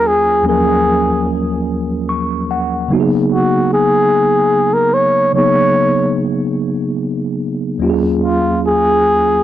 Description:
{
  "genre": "R&B",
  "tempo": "49 BPM (dotted quarters)",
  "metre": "6/8",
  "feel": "straight",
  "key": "Eb minor",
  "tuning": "A4 = 440 Hz",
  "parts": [
    { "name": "breathy flugelhorn", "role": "melody", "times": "0.0-9.4 s", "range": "F4 to Db5", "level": "-13 LUFS", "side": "equal", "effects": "tape echo" },
    { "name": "mellow tine electric piano", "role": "accompaniment", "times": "0.0-9.4 s", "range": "Eb2 to Db6", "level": "-16 LUFS", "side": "equal", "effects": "medium stereo tremolo" }
  ],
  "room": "light reverb",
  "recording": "dry, gritty hardware recording, transformer saturation",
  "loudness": "-12 LUFS",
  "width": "side -12 dB against mid",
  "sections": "0.0-9.4 A section",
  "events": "tine electric piano fill 1.7-2.9",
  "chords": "0.0 Ebm11; 2.9 Db13sus4; 7.8 Ebm11"
}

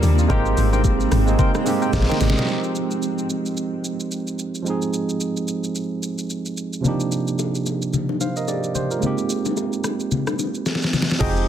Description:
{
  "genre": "amapiano",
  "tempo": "110 BPM",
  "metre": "4/4",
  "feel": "swing 58% on 16ths",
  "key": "F dorian",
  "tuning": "A4 = 440 Hz",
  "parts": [
    { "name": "barky tine electric piano", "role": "accompaniment", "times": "0.0-11.5 s", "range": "C3 to G5", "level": "-23 LUFS", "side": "right 4 dB", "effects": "overdrive" },
    { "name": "granular cloud pad", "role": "sustained chords", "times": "0.0-2.5, 11.2-11.5 s", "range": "C3 to G5", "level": "-28 LUFS", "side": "left 1 dB", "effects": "built-in reverb, sidechain pumping" },
    { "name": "woody log drum bass", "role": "bass", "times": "0.0-2.4, 11.2-11.5 s", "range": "F1 to Eb2", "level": "-19 LUFS", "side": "left 1 dB", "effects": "none" },
    { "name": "smooth R&B drum kit", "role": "drums", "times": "0.0-11.5 s", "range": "crash cymbal, hi-hat, kick drum, rim click, shaker, snare drum", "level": "-24 LUFS", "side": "left 1 dB", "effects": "none" },
    { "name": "congas and bongos", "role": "percussion", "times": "0.0-2.4, 6.8-11.4 s", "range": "none", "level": "-27 LUFS", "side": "left 7 dB", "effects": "none" },
    { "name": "percussive organ stab", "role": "stabs", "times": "0.3-2.2, 11.2-11.5 s", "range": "Ab4 to G5", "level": "-29 LUFS", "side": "left 3 dB", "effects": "chorus, tape echo" }
  ],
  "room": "light reverb",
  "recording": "dense, heavily limited modern master",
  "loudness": "-20 LUFS",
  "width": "side -10 dB against mid",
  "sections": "0.0-2.5 A section; 2.5-11.2 B section",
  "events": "drop 0.0-2.5; drum fill 1.9-2.5, 10.7-11.2",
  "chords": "0.3 Abmaj9; 2.5 Fm9; 6.8 Cm11; 9.0 Abmaj9"
}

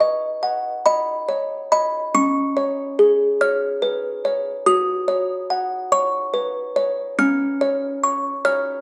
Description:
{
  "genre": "classical, lullaby for music box",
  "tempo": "48 BPM (dotted quarters)",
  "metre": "6/8",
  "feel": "straight",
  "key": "unclear",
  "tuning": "A4 = 440 Hz",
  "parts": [
    { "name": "music box", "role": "solo", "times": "0.0-8.8 s", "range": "C#4 to E#6", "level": "-21 LUFS", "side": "equal", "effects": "tape echo" }
  ],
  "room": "moderate recital hall reverb, RT60 1.5 s",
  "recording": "dark, warm production",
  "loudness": "-21 LUFS",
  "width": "mono",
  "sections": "0.0-8.8 A section",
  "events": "none",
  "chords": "0.0 B; 2.1 C#; 4.7 F#5; 7.2 C#"
}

